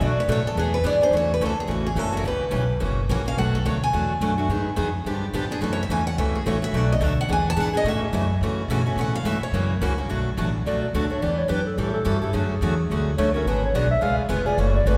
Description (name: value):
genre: acoustic string swing (jazz manouche)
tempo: 214 BPM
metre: 4/4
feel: swing 59% on 8ths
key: A major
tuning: A4 = 440 Hz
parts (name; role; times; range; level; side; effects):
- picked steel-string acoustic guitar; melody; 0.0-9.7 s; F#4 to A5; -28 LUFS; equal; none
- picked steel-string acoustic guitar; accompaniment; 0.0-15.0 s; B2 to A4; -28 LUFS; equal; none
- upright bass; bass; 0.0-15.0 s; E#1 to C#3; -27 LUFS; equal; none
- breathy clarinet; second line; 10.7-15.0 s; F#4 to E#5; -28 LUFS; equal; none
room: wet church reverb, RT60 3.2 s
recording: recorded in a church or concert hall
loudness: -23 LUFS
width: mono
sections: 0.0-1.1 A section; 1.1-10.1 A section; 10.1-15.0 A section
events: steel-string acoustic guitar solo 0.0-10.1; clarinet solo 10.1-15.0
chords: 0.0 Bm7; 0.6 E7; 1.1 A6; 2.2 C#m7b5; 2.8 F#7; 3.4 Bm7; 4.5 G#m7; 5.1 G9; 5.6 F#m7; 6.7 Bm7; 7.3 E7; 7.9 A69; 9.5 F#7; 10.1 Bm7; 11.2 Em7; 11.8 A7; 12.3 Dmaj7; 13.5 G#m7b5; 14.0 C#7